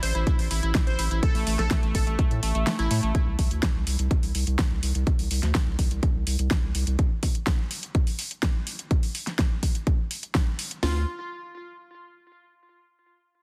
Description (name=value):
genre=progressive house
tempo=125 BPM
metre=4/4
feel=straight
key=D minor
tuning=A4 = 439 Hz
part: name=glassy wavetable pluck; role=arpeggios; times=0.0-3.1, 10.8-11.0 s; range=A3 to C5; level=-33 LUFS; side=equal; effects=chorus, sidechain pumping, tape echo
part: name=saturated sub bass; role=bass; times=0.0-7.0, 10.8-11.1 s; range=A1 to A2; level=-28 LUFS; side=equal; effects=sidechain pumping
part: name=deep house drum kit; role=drums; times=0.0-10.8 s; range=hi-hat, snare drum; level=-33 LUFS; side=equal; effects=none
part: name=house drum kit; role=drums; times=0.3-10.9 s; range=hi-hat, kick drum, snare drum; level=-26 LUFS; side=equal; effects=none
room=little or no reverb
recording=dense, heavily limited modern master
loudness=-25 LUFS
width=mono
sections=0.0-3.1 A section; 3.1-10.8 B section; 10.8-12.7 C section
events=drop 0.0-3.1; kick drops out 2.7-3.1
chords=0.0 A5; 3.1 N.C.; 10.8 Dm